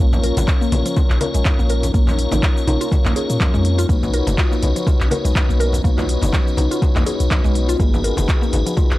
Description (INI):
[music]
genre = afro house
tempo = 123 BPM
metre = 4/4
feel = swing 56% on 16ths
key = Bb phrygian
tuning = A4 = 440 Hz
[part]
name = ethereal airy pad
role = sustained chords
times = 0.1-9.0 s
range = Ab3 to Bb5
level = -30 LUFS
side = equal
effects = ensemble chorus, built-in reverb, sidechain pumping
[part]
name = mallet-like synth pluck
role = arpeggios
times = 0.0-8.9 s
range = F3 to Bb4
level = -25 LUFS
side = equal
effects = chorus, phaser, sidechain pumping, tape echo
[part]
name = tonewheel organ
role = stabs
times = 0.0-9.0 s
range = Db4 to Db5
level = -24 LUFS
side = left 3 dB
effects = chorus vibrato, sidechain pumping, tape echo
[part]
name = warm 808-style bass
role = bass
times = 0.0-9.0 s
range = F#1 to Bb2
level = -19 LUFS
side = equal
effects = sidechain pumping
[part]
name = afro-pop drum kit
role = drums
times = 0.1-9.0 s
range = cabasa, handclaps, hi-hat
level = -26 LUFS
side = equal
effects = none
[part]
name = congas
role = percussion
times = 0.1-8.9 s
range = none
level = -26 LUFS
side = equal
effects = none
[part]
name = electronic kick drum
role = drums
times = 0.5-8.9 s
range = none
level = -17 LUFS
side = equal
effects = overdrive
[sound]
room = digital ambience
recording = dry, gritty hardware recording, cassette tape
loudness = -15 LUFS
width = side -17 dB against mid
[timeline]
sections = 0.0-9.0 A section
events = none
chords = 0.0 Bbm; 3.9 Badd9; 7.8 Abm7